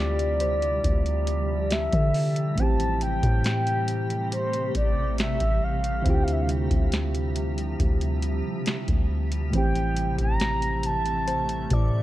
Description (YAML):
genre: contemporary R&B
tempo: 69 BPM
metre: 4/4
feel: straight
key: unclear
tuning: A4 = 440 Hz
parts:
  - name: mellow horn-like synth lead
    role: melody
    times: 0.0-12.0 s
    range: C5 to Bb5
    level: -28 LUFS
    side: equal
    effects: chorus, ping-pong delay
  - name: soft electric-piano-like synth keys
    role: accompaniment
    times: 0.0-12.0 s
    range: A2 to G4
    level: -31 LUFS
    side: right 1 dB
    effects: chorus
  - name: granular cloud pad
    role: sustained chords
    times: 0.0-12.0 s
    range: C3 to E5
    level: -33 LUFS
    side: equal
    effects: built-in reverb, sidechain pumping
  - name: soft 808-style bass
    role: bass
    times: 0.0-12.0 s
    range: A1 to D3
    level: -27 LUFS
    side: equal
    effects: none
  - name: booming analog drum machine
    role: drums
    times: 0.2-11.9 s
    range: hi-hat, kick drum, snare drum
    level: -26 LUFS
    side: equal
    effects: none
  - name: soft round pluck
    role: texture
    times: 0.4-12.0 s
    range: G4 to C5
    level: -40 LUFS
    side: left 2 dB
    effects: chorus, ping-pong delay
room: digital ambience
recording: worn, warbling old tape, cassette tape, warbly pitch drift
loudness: -22 LUFS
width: side -15 dB against mid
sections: 0.0-12.0 A section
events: none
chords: 0.0 Dm11; 2.6 Am7; 6.1 Dm11; 9.5 Am7